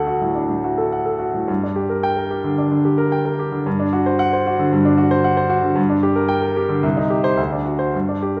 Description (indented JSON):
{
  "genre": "classical, virtuoso piano study",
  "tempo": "112 BPM",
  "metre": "4/4",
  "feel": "uneven beats, rubato",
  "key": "G minor",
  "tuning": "A4 = 440 Hz",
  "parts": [
    { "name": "clear grand piano", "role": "solo", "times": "0.0-8.4 s", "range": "C2 to G5", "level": "-19 LUFS", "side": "equal", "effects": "none" }
  ],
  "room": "wet recital hall reverb, RT60 1.3 s",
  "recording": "recorded in a church or concert hall",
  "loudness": "-19 LUFS",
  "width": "mono",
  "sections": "0.0-8.4 A section",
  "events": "none",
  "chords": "0.0 D; 1.5 Gm; 3.7 D7/G; 5.8 Gm; 6.8 Cm; 7.4 D7",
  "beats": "0.36 0.93 | 1.49 2.04 2.58 3.12 | 3.66 4.20 4.73 5.25 | 5.78 6.31 6.84 7.38 | 7.94"
}